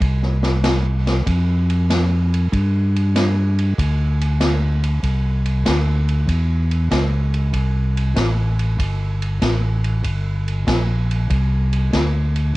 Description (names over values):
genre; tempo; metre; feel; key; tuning
soul jazz organ trio; 96 BPM; 4/4; swing 68% on 8ths; C mixolydian; A4 = 440 Hz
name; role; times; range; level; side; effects
tonewheel organ; bass; 0.0-12.6 s; G1 to G2; -17 LUFS; equal; chorus vibrato, transformer saturation
swinging big-band drum kit; drums; 0.0-12.4 s; hi-hat, kick drum, ride cymbal, snare drum; -23 LUFS; equal; cassette tape
room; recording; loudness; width
little or no reverb; home recording on cassette; -16 LUFS; side -19 dB against mid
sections
0.0-5.0 A section; 5.0-12.6 B section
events
none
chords
none